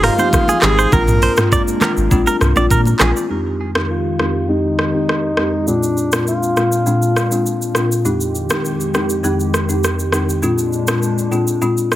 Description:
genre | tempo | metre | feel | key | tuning
afrobeats | 101 BPM | 4/4 | straight | F dorian | A4 = 438 Hz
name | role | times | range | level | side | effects
breathy alto saxophone | melody | 0.0-7.7 s | D4 to Bb4 | -21 LUFS | equal | low-pass filter, digital delay
folk marimba with soft mallets | accompaniment | 0.0-12.0 s | F2 to G4 | -18 LUFS | left 1 dB | low-pass filter
hollow soft pad | sustained chords | 0.0-12.0 s | F2 to G4 | -24 LUFS | equal | chorus, low-pass filter
direct-recorded clean electric guitar | riff | 0.0-3.1 s | Ab4 to D5 | -20 LUFS | right 3 dB | digital delay
sub bass with octave | bass | 0.0-3.1 s | Ab1 to Bb2 | -17 LUFS | equal | none
afro-pop drum kit | drums | 0.0-12.0 s | handclaps, hi-hat, kick drum, rim click, shaker, toms | -19 LUFS | equal | none
congas | percussion | 0.2-3.1 s | none | -25 LUFS | right 1 dB | none
room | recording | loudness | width
digital ambience | heavily compressed radio sound | -14 LUFS | side -14 dB against mid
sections
0.0-3.3 A section; 3.3-12.0 B section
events
filter sweep 3.3-12.0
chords
0.0 Fm9; 0.9 Bb7; 3.3 Fm9; 5.7 Bb7; 8.1 Fm9; 10.4 Bb7

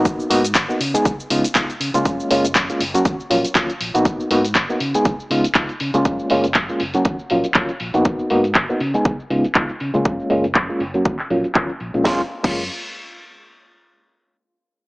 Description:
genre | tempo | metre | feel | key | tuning
filtered disco house | 120 BPM | 4/4 | swing 56% on 16ths | F# major | A4 = 440 Hz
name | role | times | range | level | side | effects
overdriven reed electric piano | accompaniment | 0.0-12.6 s | F#3 to G#4 | -19 LUFS | equal | fast tremolo, phaser, sidechain pumping, low-pass filter
fingered electric bass with an envelope filter | bass | 0.0-12.7 s | F#1 to C#3 | -28 LUFS | equal | sidechain pumping, low-pass filter
electronic kick drum | drums | 0.1-12.5 s | none | -20 LUFS | equal | none
house drum kit | drums | 0.1-12.5 s | crash cymbal, handclaps, hi-hat, shaker, snare drum | -21 LUFS | equal | sidechain pumping on hats, low-pass filter on hats, sidechain pumping on perc, low-pass filter on perc, low-pass filter on snare, sidechain pumping on cymbals, low-pass filter on cymbals, low-pass filter on room
room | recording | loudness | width
light reverb | small speaker sound | -17 LUFS | side -22 dB against mid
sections
0.0-12.1 A section; 12.1-14.1 B section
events
filter sweep on drum 0.0-12.1; filter sweep on fingered electric bass 0.0-12.1; filter sweep 0.0-12.1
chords
0.1 G#m7; 0.8 C#7; 2.1 F#maj9; 3.1 D#m7; 4.1 G#m7; 4.8 C#7; 6.1 F#maj9; 7.1 D#m7; 8.1 G#m7; 8.8 C#7; 10.1 F#maj9; 11.1 D#m7; 12.1 F#maj9

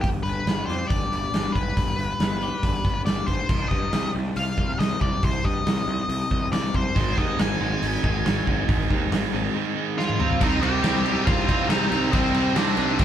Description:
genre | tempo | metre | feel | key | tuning
quiet-loud alternative rock | 139 BPM | 4/4 | straight | C minor | A4 = 438 Hz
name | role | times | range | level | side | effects
octave-fuzz lead guitar | melody | 0.0-13.0 s | C4 to Ab5 | -28 LUFS | left 2 dB | distortion
twelve-string electric guitar | arpeggios | 0.0-10.4 s | G2 to G4 | -33 LUFS | left 5 dB | tremolo
fuzz picked electric bass | bass | 0.0-13.0 s | G1 to G2 | -28 LUFS | equal | overdrive
big rock drum kit | drums | 0.0-13.0 s | crash cymbal, hi-hat, kick drum, snare drum, toms | -25 LUFS | equal | none
distorted electric guitar | riff | 7.0-13.0 s | Ab2 to Eb4 | -26 LUFS | right 5 dB | distortion
overdriven electric guitar | riff | 10.4-13.0 s | C3 to Eb4 | -28 LUFS | left 4 dB | none
room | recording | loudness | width
moderate studio reverb, RT60 0.5 s | band playing live in one room | -21 LUFS | side -10 dB against mid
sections
0.0-3.5 A section; 3.5-10.4 B section; 10.4-13.0 C section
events
drum fill 10.0-10.4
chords
0.0 G; 3.5 Cm; 7.0 Ab; 10.2 C5; 10.4 Cm

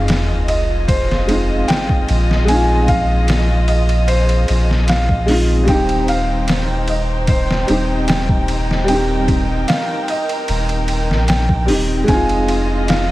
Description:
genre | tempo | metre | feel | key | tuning
trip hop | 75 BPM | 4/4 | straight | F minor | A4 = 441 Hz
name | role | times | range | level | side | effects
felt-muted upright piano | melody | 0.0-13.1 s | C5 to Ab5 | -23 LUFS | right 1 dB | tape echo
warm upright piano | accompaniment | 0.0-13.1 s | G3 to G4 | -21 LUFS | equal | tremolo, vintage 12-bit sampler grit, tape echo
muted symphonic violin section | sustained chords | 0.0-13.1 s | Eb4 to G5 | -24 LUFS | equal | none
soft dub sub bass | bass | 0.0-13.1 s | Eb1 to Bb1 | -17 LUFS | equal | none
sub drop | sound effects | 0.0-2.5 s | none | -25 LUFS | equal | none
trip hop sampler-style drum kit | drums | 0.1-13.1 s | hi-hat, kick drum, ride cymbal, snare drum | -20 LUFS | equal | overdrive, studio ambience
flickering grainy texture | texture | 12.5-13.1 s | Eb4 | -28 LUFS | equal | none
room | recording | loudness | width
digital ambience | vinyl crackle | -14 LUFS | side -17 dB against mid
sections
0.0-13.1 A section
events
impact 0.0-2.5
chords
0.0 Fm7; 5.7 Cm/Eb; 12.1 Fm7

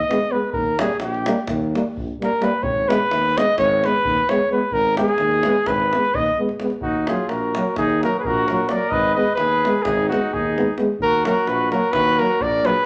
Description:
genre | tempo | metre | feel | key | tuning
balkan folk, Balkan brass band | 259 BPM (eighths) | 9/8 | straight | G# harmonic minor, Eb harmonic minor from 6.8 s | A4 = 440 Hz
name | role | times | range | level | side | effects
warm flugelhorn | melody | 0.0-12.9 s | Gb4 to Eb5 | -22 LUFS | equal | none
mellow euphonium | accompaniment | 0.1-12.7 s | Gb3 to G#3 | -28 LUFS | equal | none
warm euphonium | accompaniment | 0.1-12.7 s | Bb3 to B3 | -30 LUFS | equal | none
davul | percussion | 0.1-12.7 s | none | -33 LUFS | equal | none
warm tuba | bass | 0.5-12.8 s | Ab1 to D#2 | -28 LUFS | equal | none
mellow trumpet | second line | 6.8-12.9 s | Eb4 to Cb5 | -28 LUFS | equal | none
room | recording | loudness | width
moderate large studio reverb, RT60 0.9 s | none | -20 LUFS | mono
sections
0.0-6.8 A section; 6.8-12.9 B section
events
flugelhorn solo 0.0-6.8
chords
0.0 G#m; 0.5 D#; 2.6 G#m; 6.8 Ebm; 8.9 Abm; 11.0 Ebm

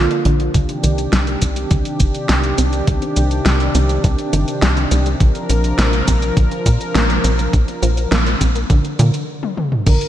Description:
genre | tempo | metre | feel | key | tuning
synthwave | 103 BPM | 4/4 | straight | unclear | A4 = 439 Hz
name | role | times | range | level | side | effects
expressive synth lead | melody | 0.0-0.4, 9.9-10.1 s | F4 to Bb4 | -23 LUFS | right 5 dB | lush chorus, ping-pong delay
warm analog pad | sustained chords | 0.0-10.1 s | C3 to Bb4 | -22 LUFS | equal | chorus, sidechain pumping
wide unison pluck | arpeggios | 0.0-10.1 s | D3 to C4 | -24 LUFS | right 2 dB | ping-pong delay
tight sequencer bass | bass | 0.0-10.0 s | G1 to Bb2 | -17 LUFS | equal | none
pop drum kit | drums | 0.1-10.1 s | crash cymbal, hi-hat, shaker, snare drum, toms | -21 LUFS | equal | none
electronic kick drum | drums | 0.5-10.0 s | none | -16 LUFS | equal | none
room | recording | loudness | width
moderate lush hall reverb, RT60 2.1 s | dark, warm production | -14 LUFS | side -12 dB against mid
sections
0.5-9.9 A section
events
filter sweep on synth arpeggio sound 0.5-9.9; stop 9.3-9.9; drum fill 9.4-9.9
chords
0.0 Bb; 0.5 Cmadd9; 5.2 Bbadd9

